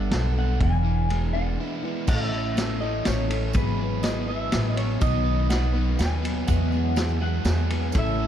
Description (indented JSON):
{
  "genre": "folk rock and heartland rock",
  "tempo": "123 BPM",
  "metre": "3/4",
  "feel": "straight",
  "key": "A lydian",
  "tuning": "A4 = 440 Hz",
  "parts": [
    { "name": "electric guitar through a small old amp", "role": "melody", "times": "0.0-8.3 s", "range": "B4 to G#5", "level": "-32 LUFS", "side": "equal", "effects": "lush chorus, tape echo" },
    { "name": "picked plugged-in steel-string acoustic guitar", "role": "accompaniment", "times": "0.0-8.3 s", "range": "E2 to A4", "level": "-32 LUFS", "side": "left 4 dB", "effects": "none" },
    { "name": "overdriven electric guitar", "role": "riff", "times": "0.0-8.3 s", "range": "E2 to B4", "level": "-30 LUFS", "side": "right 3 dB", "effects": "none" },
    { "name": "upright bass", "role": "bass", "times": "0.0-8.3 s", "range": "E1 to E2", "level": "-25 LUFS", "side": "equal", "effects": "none" },
    { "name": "vintage drum kit", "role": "drums", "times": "0.1-8.1 s", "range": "crash cymbal, kick drum, ride cymbal, snare drum", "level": "-28 LUFS", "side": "equal", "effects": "none" },
    { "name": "tambourine", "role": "percussion", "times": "2.1-8.0 s", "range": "none", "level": "-43 LUFS", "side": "right 11 dB", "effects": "none" },
    { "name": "hand-pumped harmonium", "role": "sustained chords", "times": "7.9-8.3 s", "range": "E4 to A5", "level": "-38 LUFS", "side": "left 1 dB", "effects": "none" }
  ],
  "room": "little or no reverb",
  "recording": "dark, warm production",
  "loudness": "-22 LUFS",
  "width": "side -10 dB against mid",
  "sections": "0.0-2.1 A section; 2.1-8.3 B section",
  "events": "break 1.6-2.1",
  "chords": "0.0 Gadd9; 0.6 E7; 2.1 A; 3.5 Eadd9/G#; 5.0 B; 6.5 Eadd9"
}